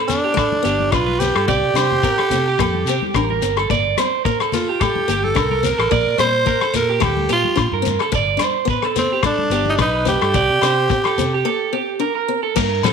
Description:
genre	highlife guitar band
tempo	108 BPM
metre	4/4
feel	swing 54% on 16ths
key	G minor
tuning	A4 = 440 Hz
part	electric guitar through a small old amp	arpeggios	0.0-12.9 s	G4 to D5	-21 LUFS	right 10 dB	tape echo
part	growling tenor saxophone	melody	0.1-12.0 s	C4 to C5	-19 LUFS	right 1 dB	tape echo
part	picked acoustic archtop guitar	accompaniment	0.1-12.9 s	A3 to D4	-26 LUFS	left 11 dB	none
part	warm soul drum kit	drums	0.1-12.9 s	crash cymbal, hi-hat, kick drum, rim click, snare drum	-23 LUFS	left 5 dB	none
part	congas	percussion	0.1-11.3 s	none	-30 LUFS	left 9 dB	none
part	shekere	percussion	0.1-12.9 s	none	-28 LUFS	left 7 dB	none
part	agogo bells	percussion	0.4-12.9 s	none	-28 LUFS	left 14 dB	none
part	fingered electric bass	bass	0.7-12.8 s	G1 to C3	-24 LUFS	equal	none
room	moderate echo chamber reverb, RT60 1.3 s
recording	1960s-style stereo with parts hard left and right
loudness	-15 LUFS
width	side -6 dB against mid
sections	0.0-12.6 A section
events	break 11.5-12.6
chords	0.0 G; 1.5 C5; 3.7 Gmadd9; 5.9 Bbadd9; 8.1 G; 10.3 C5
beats	0.37 0.93 | 1.48 2.04 2.59 3.15 | 3.70 4.25 4.81 5.36 | 5.92 6.47 7.02 7.58 | 8.13 8.69 9.24 9.79 | 10.35 10.90 11.46 12.01 | 12.57

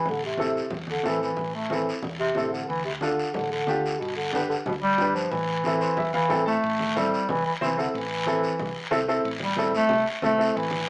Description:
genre	latin, cumbia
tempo	183 BPM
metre	4/4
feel	straight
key	A minor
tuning	A4 = 440 Hz
part	mellow bass clarinet	melody	0.0-10.9 s	B2 to A3	-25 LUFS	equal	none
part	hollow-body short-scale fingered electric bass	bass	0.1-10.9 s	G1 to E2	-39 LUFS	equal	none
part	congas	percussion	0.1-10.9 s	none	-35 LUFS	equal	none
part	guiro	percussion	0.1-10.9 s	none	-35 LUFS	left 1 dB	none
part	clear upright piano	accompaniment	0.4-10.6 s	C4 to A5	-27 LUFS	equal	none
room	moderate large studio reverb, RT60 0.9 s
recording	small speaker sound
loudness	-23 LUFS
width	side -32 dB against mid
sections	0.0-6.6 A section; 6.6-10.9 B section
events	upright piano fill 5.7-6.6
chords	0.1 Am; 2.7 Dm; 4.0 G; 5.3 Am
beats	| 0.07 0.40 0.73 1.06 | 1.39 1.72 2.04 2.37 | 2.70 3.03 3.36 3.69 | 4.01 4.34 4.67 5.00 | 5.33 5.65 5.98 6.31 | 6.64 6.96 7.29 7.62 | 7.95 8.27 8.60 8.93 | 9.25 9.58 9.91 10.23 | 10.56 10.89

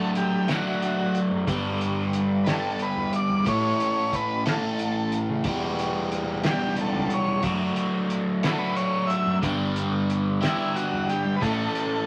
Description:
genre	psychedelic rock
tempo	60 BPM (dotted quarters)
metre	6/8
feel	straight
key	unclear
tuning	A4 = 442 Hz
part	combo organ	melody	0.0-12.1 s	E4 to E5	-30 LUFS	equal	none
part	overdriven semi-hollow guitar	riff	0.0-12.1 s	E2 to A4	-27 LUFS	equal	phaser
part	cloth-damped thuddy drum kit	drums	0.2-11.9 s	hi-hat, kick drum, snare drum	-32 LUFS	equal	none
part	fuzz fingered electric bass	bass	1.3-11.7 s	C#2 to C#3	-32 LUFS	equal	overdrive
room	wet studio reverb, RT60 0.7 s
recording	vinyl crackle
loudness	-25 LUFS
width	mono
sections	0.0-12.1 A section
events	none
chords	0.0 D/F#; 1.5 G6; 3.5 A; 5.5 Em; 7.4 D/F#; 9.4 G6; 11.4 A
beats	0.47 | 1.47 2.47 | 3.46 4.46 | 5.45 6.44 | 7.44 8.43 | 9.42 10.42 | 11.41

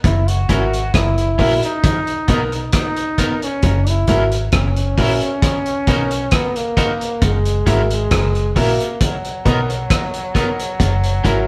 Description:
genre	roots reggae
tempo	67 BPM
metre	4/4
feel	straight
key	F# mixolydian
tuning	A4 = 441 Hz
part	bright trombone	melody	0.0-11.5 s	F#3 to F#4	-24 LUFS	equal	none
part	semi-hollow electric guitar	riff	0.0-11.5 s	F#2 to B2	-29 LUFS	equal	none
part	vintage muted fingered electric bass	bass	0.0-11.5 s	F#1 to B1	-21 LUFS	equal	none
part	vintage drum kit	drums	0.0-11.5 s	hi-hat, kick drum, rim click	-21 LUFS	equal	none
part	electric guitar at the edge of break-up	accompaniment	0.5-11.4 s	B3 to A#4	-28 LUFS	equal	harmonic tremolo, analog delay
part	clear concert grand piano	stabs	0.5-11.5 s	F#4 to E5	-25 LUFS	equal	none
room	wet stone room reverb, RT60 1.0 s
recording	band playing live in one room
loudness	-17 LUFS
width	mono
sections	0.0-11.5 A section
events	none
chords	0.0 F#7; 1.8 Bmaj7; 3.6 F#7; 5.4 Bmaj7; 7.2 F#7; 9.0 Bmaj7; 10.8 F#7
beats	| 0.04 0.94 1.84 2.74 | 3.63 4.53 5.43 6.32 | 7.22 8.11 9.01 9.90 | 10.80

